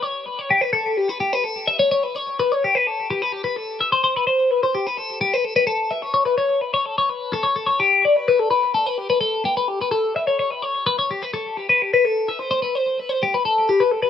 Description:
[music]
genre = rock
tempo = 254 BPM (eighths)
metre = 9/8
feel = straight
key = G lydian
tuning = A4 = 440 Hz
[part]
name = twelve-string electric guitar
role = solo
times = 0.0-14.1 s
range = G4 to E5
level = -18 LUFS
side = left 3 dB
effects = phaser, tape echo
[sound]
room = moderate studio reverb, RT60 0.7 s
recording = rough home demo mix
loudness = -18 LUFS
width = side -9 dB against mid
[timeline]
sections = 0.0-3.6 A section; 3.6-14.1 B section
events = none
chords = none

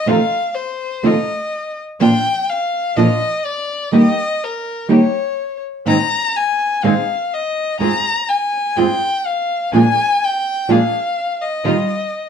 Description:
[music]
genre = tango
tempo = 124 BPM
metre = 4/4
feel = rubato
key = unclear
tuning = A4 = 438 Hz
[part]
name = warm violin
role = second line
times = 0.0-12.3 s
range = Bb4 to Bb5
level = -18 LUFS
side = left 3 dB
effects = none
[part]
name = nylon-string guitar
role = accompaniment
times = 0.1-11.7 s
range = F2 to Ab4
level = -14 LUFS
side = right 2 dB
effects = none
[part]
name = muted studio string section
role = stabs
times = 0.1-11.8 s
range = Ab2 to Ab4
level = -23 LUFS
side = right 1 dB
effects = none
[sound]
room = wet studio reverb, RT60 0.6 s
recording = heard from further back in the room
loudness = -15 LUFS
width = side -7 dB against mid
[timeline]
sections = 0.0-12.3 A section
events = violin solo 0.0-12.3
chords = 0.1 F7; 2.0 Bb/F; 3.9 Eb; 5.9 Ab; 7.8 Fm/Ab; 9.7 Bb7; 11.6 Ebadd9

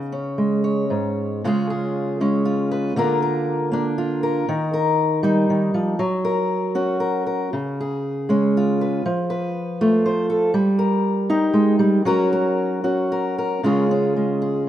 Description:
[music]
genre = folk, solo fingerstyle acoustic guitar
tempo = 118 BPM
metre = 3/4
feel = rubato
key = Db mixolydian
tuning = A4 = 440 Hz
[part]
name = fingerpicked steel-string acoustic guitar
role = solo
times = 0.0-14.7 s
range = Ab2 to Db5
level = -18 LUFS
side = equal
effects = none
[sound]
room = moderate lush hall reverb, RT60 2.5 s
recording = rough home demo mix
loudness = -18 LUFS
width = side -11 dB against mid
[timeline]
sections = 0.0-1.4 A section; 1.4-13.6 B section; 13.6-14.7 A section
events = none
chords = 0.0 Db5; 1.4 Db; 3.0 Bb/D; 4.5 Eb; 6.0 Gb; 7.5 Db; 9.0 F; 10.5 Eb/G; 12.1 Gb; 13.6 Db

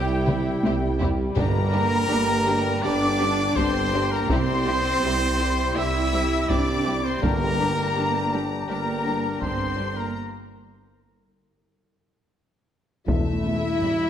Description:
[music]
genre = cinematic, epic orchestral film score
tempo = 82 BPM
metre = 4/4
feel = straight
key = G dorian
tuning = A4 = 438 Hz
[part]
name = dark symphonic violin section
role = melody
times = 0.0-14.1 s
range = E5 to E6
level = -32 LUFS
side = left 6 dB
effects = none
[part]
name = mellow flute section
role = second line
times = 0.0-10.2 s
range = G5 to E6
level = -31 LUFS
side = left 4 dB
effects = none
[part]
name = clear French horn section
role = sustained chords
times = 0.0-14.1 s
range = G3 to E4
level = -30 LUFS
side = left 2 dB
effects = none
[part]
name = dark woodwind section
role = sustained chords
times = 0.0-10.2 s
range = G3 to G5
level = -35 LUFS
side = right 1 dB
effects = none
[part]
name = bright trumpet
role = stabs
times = 0.0-10.2 s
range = G4 to E5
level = -28 LUFS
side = right 2 dB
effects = none
[part]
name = mellow tuba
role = bass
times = 0.0-13.9 s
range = E1 to C2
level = -30 LUFS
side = right 2 dB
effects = none
[part]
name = warm symphonic cello section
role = bass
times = 0.0-13.9 s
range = E2 to E4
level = -31 LUFS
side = right 2 dB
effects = none
[part]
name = warm symphonic double bass section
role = bass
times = 0.0-13.9 s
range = E1 to C2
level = -30 LUFS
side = right 2 dB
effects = none
[part]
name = warm symphonic violin section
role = second line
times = 0.3-14.1 s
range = D4 to E5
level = -35 LUFS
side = left 3 dB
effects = none
[part]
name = warm symphonic viola section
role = accompaniment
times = 0.3-14.1 s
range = G3 to D4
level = -34 LUFS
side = equal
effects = none
[part]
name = taiko ensemble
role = drums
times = 0.3-14.1 s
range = none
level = -28 LUFS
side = left 1 dB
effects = none
[part]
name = timpani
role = percussion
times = 1.4-2.4, 7.2-8.3, 13.1-14.1 s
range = E2 to G2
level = -30 LUFS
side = left 1 dB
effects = none
[sound]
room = moderate scoring stage reverb, RT60 1.7 s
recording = none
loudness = -21 LUFS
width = side -9 dB against mid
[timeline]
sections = 0.0-13.1 A section; 13.1-14.1 B section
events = drum fill 0.3-1.4, 12.0-13.1; break 10.2-13.1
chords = 0.0 C; 1.4 Gm; 4.3 C; 7.2 Gm; 10.2 N.C.; 13.1 Em

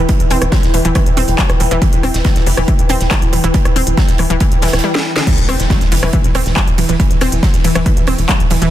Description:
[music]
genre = driving peak-time techno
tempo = 139 BPM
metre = 4/4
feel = straight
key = E minor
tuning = A4 = 438 Hz
[part]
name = analog pluck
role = riff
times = 0.0-8.7 s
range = D3 to C4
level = -19 LUFS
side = equal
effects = chorus, tube saturation, sidechain pumping, dub echo
[part]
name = tight sequencer bass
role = bass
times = 0.0-8.7 s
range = E1 to F#1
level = -17 LUFS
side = equal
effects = sidechain pumping
[part]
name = swarming drone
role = drone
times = 0.0-8.7 s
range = E3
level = -24 LUFS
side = left 1 dB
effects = built-in reverb, sidechain pumping
[part]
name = ethereal airy pad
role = texture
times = 0.0-4.8 s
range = E4 to G5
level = -23 LUFS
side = equal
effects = ensemble chorus, built-in reverb, sidechain pumping
[part]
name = big rock drum kit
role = drums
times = 0.1-8.6 s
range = hi-hat, snare drum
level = -28 LUFS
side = right 3 dB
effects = high-pass filter on hats, studio reverb, high-pass filter on snare, high-pass filter on room
[part]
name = electronic kick drum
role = drums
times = 0.1-8.4 s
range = none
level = -14 LUFS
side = equal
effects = overdrive, studio reverb
[part]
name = techno drum kit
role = drums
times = 0.1-8.7 s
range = crash cymbal, handclaps, hi-hat, ride cymbal, rim click, snare drum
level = -20 LUFS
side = equal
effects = overdrive, studio reverb
[part]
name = impact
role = sound effects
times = 5.3-7.0 s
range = none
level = -24 LUFS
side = equal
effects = none
[sound]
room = digital ambience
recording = dense, heavily limited modern master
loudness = -11 LUFS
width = side -13 dB against mid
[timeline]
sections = 0.0-5.3 A section; 5.3-8.7 B section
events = drum fill 4.9-5.3; drop 5.3-8.7; impact 5.3-7.0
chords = 0.0 Em; 5.3 N.C.

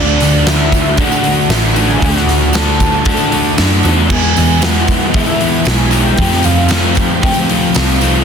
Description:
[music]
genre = rock, shoegaze and dream pop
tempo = 115 BPM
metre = 4/4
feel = straight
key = D lydian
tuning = A4 = 440 Hz
[part]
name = warm velvety synth lead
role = melody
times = 0.0-7.7 s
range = D5 to A5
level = -20 LUFS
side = left 1 dB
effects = chorus, tremolo, tape echo
[part]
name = overdriven electric guitar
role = riff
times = 0.0-8.2 s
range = D3 to F#4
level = -18 LUFS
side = right 15 dB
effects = reverse reverb
[part]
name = overdriven semi-hollow guitar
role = riff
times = 0.0-8.2 s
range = D3 to F#4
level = -16 LUFS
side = left 9 dB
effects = wide subtle chorus
[part]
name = vintage muted picked electric bass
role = bass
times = 0.0-8.2 s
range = A1 to F#2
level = -15 LUFS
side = equal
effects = none
[part]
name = tambourine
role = percussion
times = 0.1-8.1 s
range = none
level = -28 LUFS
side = right 23 dB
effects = none
[part]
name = huge arena drum kit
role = drums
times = 0.2-8.1 s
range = crash cymbal, hi-hat, kick drum, snare drum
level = -15 LUFS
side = equal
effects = none
[sound]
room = small room ambience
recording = dense, heavily limited modern master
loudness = -10 LUFS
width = side -7 dB against mid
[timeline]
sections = 0.0-8.2 A section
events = none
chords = 0.0 Dadd9; 4.1 E; 6.2 Fadd9

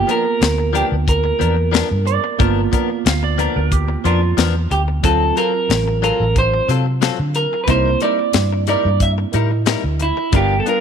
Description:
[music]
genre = straight-eighth soul blues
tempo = 91 BPM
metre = 4/4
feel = straight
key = unclear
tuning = A4 = 440 Hz
[part]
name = electric guitar through a small old amp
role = melody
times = 0.0-10.8 s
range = E4 to E5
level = -19 LUFS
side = right 2 dB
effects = none
[part]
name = tine electric piano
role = accompaniment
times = 0.0-10.8 s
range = F#3 to F5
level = -25 LUFS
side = right 16 dB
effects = fast stereo tremolo
[part]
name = direct-recorded clean electric guitar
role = stabs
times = 0.1-10.8 s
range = F3 to A#4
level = -24 LUFS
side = left 12 dB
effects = lush chorus
[part]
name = tight funk drum kit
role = drums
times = 0.1-10.8 s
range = hi-hat, kick drum, snare drum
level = -19 LUFS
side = left 3 dB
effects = none
[part]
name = vintage muted fingered electric bass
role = bass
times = 0.4-10.6 s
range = G1 to D3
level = -18 LUFS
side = equal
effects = none
[part]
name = clean lap steel guitar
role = second line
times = 2.1-4.5 s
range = F4 to F5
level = -24 LUFS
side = right 11 dB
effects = none
[sound]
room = light reverb, studio reverb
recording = 1960s-style stereo with parts hard left and right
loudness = -14 LUFS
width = side -7 dB against mid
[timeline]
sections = 0.0-10.8 A section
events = none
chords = 0.0 G7#9 (rootless); 5.0 D7#9; 7.7 C7#9

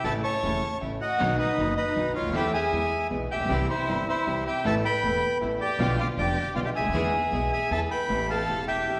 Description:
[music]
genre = tango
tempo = 157 BPM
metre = 3/4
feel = rubato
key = A minor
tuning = A4 = 436 Hz
[part]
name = bandoneon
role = melody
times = 0.0-9.0 s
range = B4 to C#6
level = -31 LUFS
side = equal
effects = none
[part]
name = warm violin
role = second line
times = 0.0-9.0 s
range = D#4 to C#5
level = -32 LUFS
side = equal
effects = none
[part]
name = clear concert grand piano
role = accompaniment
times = 0.0-9.0 s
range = E1 to A4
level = -33 LUFS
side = equal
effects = none
[part]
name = bright studio string section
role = stabs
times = 0.0-9.0 s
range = F#3 to A4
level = -40 LUFS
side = equal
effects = none
[part]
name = upright bass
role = bass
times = 0.0-9.0 s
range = E1 to E2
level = -36 LUFS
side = equal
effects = none
[sound]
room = wet recital hall reverb, RT60 1.5 s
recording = recorded in a church or concert hall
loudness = -26 LUFS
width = mono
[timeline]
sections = 0.0-8.1 A section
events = none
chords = 0.0 A; 1.2 B; 2.3 Am/E; 2.7 E; 3.5 C; 4.6 Asus2; 5.8 Bdim; 6.9 E; 8.1 Am7

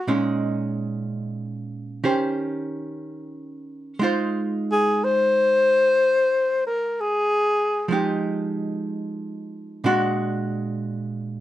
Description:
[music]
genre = jazz ballad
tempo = 61 BPM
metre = 4/4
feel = swing 68% on 8ths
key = Bb minor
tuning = A4 = 442 Hz
[part]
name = breathy alto saxophone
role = melody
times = 0.0-7.9 s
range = Gb4 to C5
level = -18 LUFS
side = left 2 dB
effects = none
[part]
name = archtop guitar, miked and amplified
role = accompaniment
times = 0.0-11.4 s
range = Bb2 to C5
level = -24 LUFS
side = right 2 dB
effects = none
[sound]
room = light reverb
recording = minimal, uncompressed stereo recording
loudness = -20 LUFS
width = side -13 dB against mid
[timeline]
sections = 0.0-11.4 A section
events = alto saxophone solo 0.0-11.4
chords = 0.1 Bbm7; 2.0 Eb6; 4.0 Ab6; 7.9 Fm9; 9.8 Bb7b13

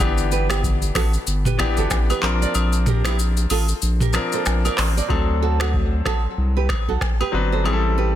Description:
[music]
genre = afrobeats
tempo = 94 BPM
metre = 4/4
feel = swing 58% on 16ths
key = unclear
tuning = A4 = 441 Hz
[part]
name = clear concert grand piano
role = accompaniment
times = 0.0-8.2 s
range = E3 to B4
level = -26 LUFS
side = left 4 dB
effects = none
[part]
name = saturated sub bass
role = bass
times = 0.0-8.2 s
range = G1 to D2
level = -21 LUFS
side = equal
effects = none
[part]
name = agogo bells and woodblock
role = percussion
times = 0.0-7.8 s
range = none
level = -31 LUFS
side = left 2 dB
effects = none
[part]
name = booming analog drum machine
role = drums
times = 0.2-7.2 s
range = finger snaps, handclaps, hi-hat, kick drum, rim click, shaker, toms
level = -22 LUFS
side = equal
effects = soft clipping on snare
[part]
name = nylon-string guitar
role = riff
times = 0.3-8.1 s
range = D4 to D5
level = -28 LUFS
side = right 9 dB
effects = ping-pong delay
[sound]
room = little or no reverb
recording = dense, heavily limited modern master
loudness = -18 LUFS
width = side -12 dB against mid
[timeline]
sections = 0.0-5.1 A section; 5.1-8.2 B section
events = kick muted 2.5-5.1; hi-hats muted 5.1-8.2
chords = 0.0 G6; 2.2 Bbadd9; 5.1 D7; 7.7 Am7

